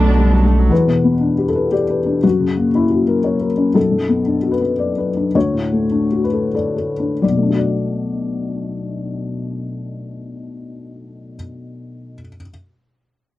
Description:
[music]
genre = neoclassical piano and strings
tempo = 87-120 BPM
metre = 3/4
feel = rubato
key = B minor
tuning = A4 = 440 Hz
[part]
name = warm symphonic violin section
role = melody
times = 0.0-0.5 s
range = D4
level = -24 LUFS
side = equal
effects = none
[part]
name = rich cello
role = second line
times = 0.0-0.5 s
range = B3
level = -27 LUFS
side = right 8 dB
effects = none
[part]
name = felt-muted upright piano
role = accompaniment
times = 0.0-12.5 s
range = B1 to D5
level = -16 LUFS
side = left 3 dB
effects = none
[part]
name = rich viola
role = accompaniment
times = 0.0-0.7 s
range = D3 to A3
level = -26 LUFS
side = right 5 dB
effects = none
[part]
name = chorused pulse-width pad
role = sustained chords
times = 0.0-0.7 s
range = F#3 to A4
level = -31 LUFS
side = right 4 dB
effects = none
[part]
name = warm sub bass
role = bass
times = 0.0-0.7 s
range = B1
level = -13 LUFS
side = right 1 dB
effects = none
[sound]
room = light reverb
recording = dry, close 1970s-style studio recording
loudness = -15 LUFS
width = side -15 dB against mid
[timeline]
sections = 0.7-7.2 A section; 7.2-11.3 B section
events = slowing down 3.0-7.2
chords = 0.0 Bm7; 0.7 Em7; 2.2 F#7; 3.8 Bm7; 5.3 Dmaj7; 7.2 Bm7

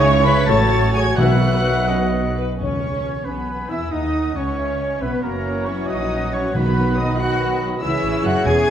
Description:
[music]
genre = quick classical-period movement for symphony orchestra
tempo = 83-95 BPM (dotted quarters)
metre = 6/8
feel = rubato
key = E major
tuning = A4 = 442 Hz
[part]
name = muted studio violin section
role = melody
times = 0.0-8.7 s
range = A#5 to B6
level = -30 LUFS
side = left 2 dB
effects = none
[part]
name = bright silver concert flute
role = second line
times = 0.0-8.7 s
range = A#4 to B5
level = -29 LUFS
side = left 2 dB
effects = none
[part]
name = muted studio violin section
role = second line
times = 0.0-8.7 s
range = B3 to E5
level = -30 LUFS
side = left 3 dB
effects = none
[part]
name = warm clarinet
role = second line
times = 0.0-8.7 s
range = C#4 to G#5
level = -30 LUFS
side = left 1 dB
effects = none
[part]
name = warm oboe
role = second line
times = 0.0-8.7 s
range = A#4 to B5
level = -28 LUFS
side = equal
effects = none
[part]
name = muted studio viola section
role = accompaniment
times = 0.0-8.7 s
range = E3 to C#5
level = -25 LUFS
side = right 1 dB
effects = none
[part]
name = warm French horn section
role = sustained chords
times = 0.0-8.7 s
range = D#3 to G#4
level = -27 LUFS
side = left 4 dB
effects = none
[part]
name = mellow trumpet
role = stabs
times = 0.0-8.7 s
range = B4 to E5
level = -27 LUFS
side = right 1 dB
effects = none
[part]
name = muted studio cello section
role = bass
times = 0.0-8.7 s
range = A2 to G#4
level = -25 LUFS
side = right 1 dB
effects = none
[part]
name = muted studio double bass section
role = bass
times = 0.0-8.7 s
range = E1 to E2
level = -24 LUFS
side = right 2 dB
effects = none
[part]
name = timpani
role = percussion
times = 1.2-3.2, 6.5-7.1 s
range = E2 to B2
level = -23 LUFS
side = equal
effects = none
[sound]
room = wet recital hall reverb, RT60 1.4 s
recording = none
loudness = -17 LUFS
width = side -9 dB against mid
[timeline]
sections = 0.0-2.6 A section; 2.6-8.7 B section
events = none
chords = 0.5 F#m/A; 1.2 Bsus4; 1.9 B; 2.6 E; 3.9 Badd9; 5.2 F#7; 6.5 B; 7.8 C#m

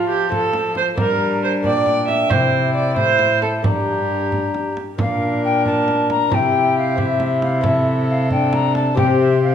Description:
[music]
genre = classical, renaissance-style consort dance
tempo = 90 BPM (dotted quarters)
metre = 6/8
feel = straight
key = unclear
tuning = A4 = 440 Hz
[part]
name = mellow alto recorder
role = melody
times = 0.0-9.5 s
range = E5 to C6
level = -22 LUFS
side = left 4 dB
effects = none
[part]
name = rich viola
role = second line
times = 0.0-9.5 s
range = G4 to E5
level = -21 LUFS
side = right 4 dB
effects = none
[part]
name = bright trombone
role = accompaniment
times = 0.0-9.5 s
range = C4 to F4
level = -23 LUFS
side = left 1 dB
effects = none
[part]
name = lute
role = accompaniment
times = 0.0-9.5 s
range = G2 to C5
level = -26 LUFS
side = left 7 dB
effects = none
[part]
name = rich cello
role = bass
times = 0.0-9.5 s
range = G2 to G3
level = -23 LUFS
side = equal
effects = none
[part]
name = frame drum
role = percussion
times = 0.3-9.2 s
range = none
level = -25 LUFS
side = right 1 dB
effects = none
[sound]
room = wet recital hall reverb, RT60 1.4 s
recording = minimal, uncompressed stereo recording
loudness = -15 LUFS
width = side -8 dB against mid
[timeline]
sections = 0.0-5.0 A section; 5.0-9.5 A section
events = none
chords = 0.0 F; 1.0 Gm; 2.3 C; 3.6 Gm; 5.0 Bb; 6.3 C; 7.7 Am/C; 9.0 C

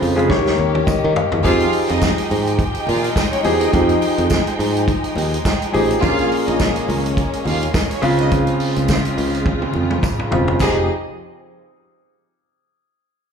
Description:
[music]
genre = disco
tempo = 105 BPM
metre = 4/4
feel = swing 56% on 16ths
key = F minor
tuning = A4 = 439 Hz
[part]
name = warm concert grand piano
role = accompaniment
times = 0.0-10.9 s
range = Bb2 to F5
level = -20 LUFS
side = left 2 dB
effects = slapback echo
[part]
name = rich studio string section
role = sustained chords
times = 0.0-10.9 s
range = Db3 to G5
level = -25 LUFS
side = right 1 dB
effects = none
[part]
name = modern bright fingered electric bass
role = bass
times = 0.0-10.9 s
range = E1 to Eb3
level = -20 LUFS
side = right 2 dB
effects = none
[part]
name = vintage drum kit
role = drums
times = 0.0-10.8 s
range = crash cymbal, hi-hat, kick drum, snare drum, toms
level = -22 LUFS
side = right 1 dB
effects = none
[part]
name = congas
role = percussion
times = 0.6-10.9 s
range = none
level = -33 LUFS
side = left 8 dB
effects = none
[part]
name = tambourine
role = percussion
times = 0.9-10.9 s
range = none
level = -37 LUFS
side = right 6 dB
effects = none
[part]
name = clear studio violin section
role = second line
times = 1.4-10.9 s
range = C4 to F5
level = -25 LUFS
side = right 1 dB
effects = slapback echo
[sound]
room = little or no reverb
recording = live gig heard through the venue's PA, club reverb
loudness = -15 LUFS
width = side -6 dB against mid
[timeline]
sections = 0.0-1.4 A section; 1.4-10.6 B section; 10.6-12.9 C section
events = drum fill 0.3-1.4, 9.5-10.6; grand piano fill 0.3-1.4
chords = 0.3 Eb7; 1.4 Fm9; 6.0 Bbm7; 8.0 Dbmaj7; 10.6 Fm9

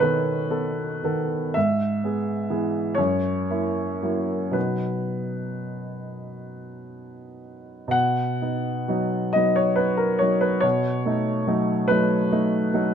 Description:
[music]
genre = classical, romantic nocturne for solo piano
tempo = 33-49 BPM (dotted quarters)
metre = 12/8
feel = rubato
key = B major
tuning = A4 = 443 Hz
[part]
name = warm baby grand piano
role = solo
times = 0.0-12.9 s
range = F#2 to F#5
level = -22 LUFS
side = equal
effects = none
[sound]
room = light reverb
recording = close, detailed microphones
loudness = -21 LUFS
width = side -8 dB against mid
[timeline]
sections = 0.0-7.9 A section; 7.9-12.9 A section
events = none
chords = 0.0 B7; 1.6 E/G#; 3.0 F#7; 4.5 B; 10.6 B7

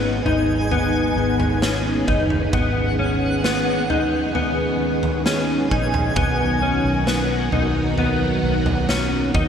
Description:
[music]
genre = dream pop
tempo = 66 BPM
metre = 4/4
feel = straight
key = G# minor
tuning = A4 = 440 Hz
[part]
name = string machine, full ensemble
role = sustained chords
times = 0.0-9.5 s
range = D#3 to A#4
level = -24 LUFS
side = right 2 dB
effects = ensemble chorus, shimmer reverb
[part]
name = mellow electric guitar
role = arpeggios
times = 0.0-9.5 s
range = B3 to D#4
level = -22 LUFS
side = left 3 dB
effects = analog chorus, digital delay, shimmer reverb
[part]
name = vintage muted fingered electric bass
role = bass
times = 0.0-9.5 s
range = F#1 to D#2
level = -25 LUFS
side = equal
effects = none
[part]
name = twinkling granular texture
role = texture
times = 0.1-6.6 s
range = F#5 to G#5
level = -29 LUFS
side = right 2 dB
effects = built-in reverb, digital delay, shimmer reverb
[part]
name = raw garage drum kit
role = drums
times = 0.3-9.5 s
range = kick drum, snare drum, toms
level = -25 LUFS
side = equal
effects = none
[sound]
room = wet concert hall reverb, RT60 2.2 s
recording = none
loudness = -18 LUFS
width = side -8 dB against mid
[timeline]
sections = 0.0-9.5 A section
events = none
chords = 0.0 G#m; 6.2 Bmaj7

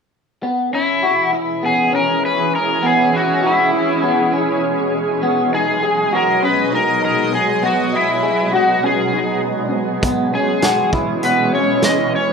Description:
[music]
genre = dream pop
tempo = 100 BPM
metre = 4/4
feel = straight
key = C# dorian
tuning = A4 = 442 Hz
[part]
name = shimmering ambient pad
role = sustained chords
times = 1.1-12.3 s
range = B2 to D#5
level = -20 LUFS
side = right 2 dB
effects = chorus, built-in reverb
[part]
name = electric guitar through a small old amp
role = arpeggios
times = 0.4-12.1 s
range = B3 to D#5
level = -19 LUFS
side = left 1 dB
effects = lush chorus, digital delay
[part]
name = overdriven slide guitar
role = melody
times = 0.7-12.3 s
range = E4 to D#5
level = -18 LUFS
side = left 2 dB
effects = digital delay
[part]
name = loose indie drum kit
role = drums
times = 10.0-12.0 s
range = hi-hat, kick drum, snare drum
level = -20 LUFS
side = right 1 dB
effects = none
[sound]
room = wet studio reverb, RT60 0.6 s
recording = rough home demo mix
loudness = -14 LUFS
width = side -5 dB against mid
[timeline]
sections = 0.4-12.3 A section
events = none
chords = 0.4 C#m7; 5.2 G#m7; 10.0 C#m7

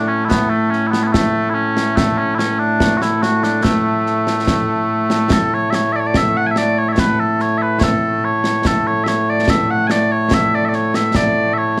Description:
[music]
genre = scottish traditional, Scottish pipe music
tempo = 72 BPM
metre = 2/4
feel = straight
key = A major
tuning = A4 = 440 Hz
[part]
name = mellow small bagpipes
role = melody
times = 0.0-11.8 s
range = A2 to G#5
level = -18 LUFS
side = equal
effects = none
[part]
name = concert snare drum and concert bass drum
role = drums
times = 0.3-11.8 s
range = none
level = -22 LUFS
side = equal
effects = none
[sound]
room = light reverb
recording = rough home demo mix, small room ambience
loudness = -16 LUFS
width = mono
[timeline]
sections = 0.0-5.3 A section; 5.3-11.8 A section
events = none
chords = none

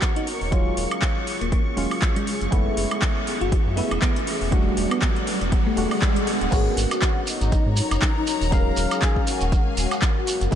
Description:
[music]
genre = deep house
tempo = 120 BPM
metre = 4/4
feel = swing 57% on 16ths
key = G# minor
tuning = A4 = 440 Hz
[part]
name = deep dark ambient pad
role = sustained chords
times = 0.0-10.6 s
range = F#3 to E#5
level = -33 LUFS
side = left 1 dB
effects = chorus, built-in reverb, sidechain pumping
[part]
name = percussive organ stab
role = stabs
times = 0.0-10.6 s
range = F#3 to E#5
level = -29 LUFS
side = equal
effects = chorus, phaser, sidechain pumping, ping-pong delay
[part]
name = deep house drum kit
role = drums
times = 0.0-10.6 s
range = crash cymbal, handclaps, hi-hat, woodblock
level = -28 LUFS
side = equal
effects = overdrive, high-pass filter on perc, high-pass filter on hats, high-pass filter on snare, high-pass filter on cymbals, high-pass filter on room
[part]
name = electronic kick drum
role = drums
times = 0.0-10.6 s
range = none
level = -22 LUFS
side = equal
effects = none
[part]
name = riser and swell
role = sound effects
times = 2.3-6.5 s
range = none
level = -33 LUFS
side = right 2 dB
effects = none
[part]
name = soft string machine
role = texture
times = 0.0-6.5 s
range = C#6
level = -37 LUFS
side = right 1 dB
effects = ensemble chorus, sidechain pumping
[part]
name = warm studio string section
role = texture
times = 0.0-10.6 s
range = F#3 to A#5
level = -34 LUFS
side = left 3 dB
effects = sidechain pumping
[part]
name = bell-like FM electric piano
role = melody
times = 0.2-6.2 s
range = G#3 to F#4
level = -31 LUFS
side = left 1 dB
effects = chorus, phaser, tape echo
[part]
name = sub bass with octave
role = bass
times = 0.4-10.6 s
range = D1 to G#2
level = -26 LUFS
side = equal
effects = tube saturation, sidechain pumping
[part]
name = mellow horn-like synth lead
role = melody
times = 6.5-10.6 s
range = D#4 to A#4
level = -28 LUFS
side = left 2 dB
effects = ensemble chorus, analog delay
[part]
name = shekere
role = percussion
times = 6.5-10.6 s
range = none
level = -33 LUFS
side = right 4 dB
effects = none
[sound]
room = light reverb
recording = nothing above 10.7 kHz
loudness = -20 LUFS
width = side -10 dB against mid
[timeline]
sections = 0.0-6.5 A section; 6.5-10.6 B section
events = build-up 0.0-6.5; filter sweep on synth stab 0.0-6.5; riser 2.3-6.5; swell 5.5-6.5; drop 6.5-10.6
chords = 0.0 G#m11 (rootless); 0.5 D#m11; 2.3 F#m11; 4.5 Em11; 6.5 G#m11; 8.5 D#m11

